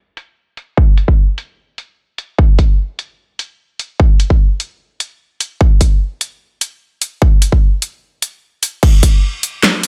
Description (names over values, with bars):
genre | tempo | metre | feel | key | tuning
dubstep | 149 BPM | 4/4 | half-time | none | none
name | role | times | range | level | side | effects
dubstep drum kit | drums | 0.2-9.9 s | crash cymbal, handclaps, hi-hat, snare drum | -19 LUFS | equal | small room ambience
electronic kick drum | drums | 0.8-9.1 s | none | -12 LUFS | equal | small room ambience
room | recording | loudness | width
little or no reverb | low-pass filter | -15 LUFS | mono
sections
0.0-8.8 A section; 8.8-9.9 B section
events
filter sweep 0.0-8.8; drop 8.8-9.9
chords
none